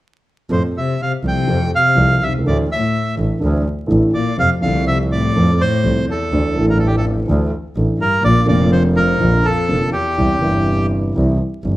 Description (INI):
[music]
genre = tango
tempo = 124 BPM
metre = 4/4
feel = rubato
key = F major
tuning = A4 = 439 Hz
[part]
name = bandoneon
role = melody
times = 0.5-10.9 s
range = G4 to G5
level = -19 LUFS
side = right 1 dB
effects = none
[part]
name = warm cello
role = second line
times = 0.5-10.9 s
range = E2 to D3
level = -21 LUFS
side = left 3 dB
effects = none
[part]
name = dark baby grand piano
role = accompaniment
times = 0.5-11.8 s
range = F1 to A4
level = -19 LUFS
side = right 1 dB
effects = none
[part]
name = clear double bass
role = bass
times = 0.5-11.8 s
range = F1 to F2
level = -19 LUFS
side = equal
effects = none
[sound]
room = light reverb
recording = vinyl crackle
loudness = -14 LUFS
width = side -16 dB against mid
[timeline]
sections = 0.5-4.4 A section; 4.4-11.8 B section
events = none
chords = 0.5 F; 2.4 Dsus2; 4.4 F; 6.3 Dsus2; 8.2 Bb; 10.2 C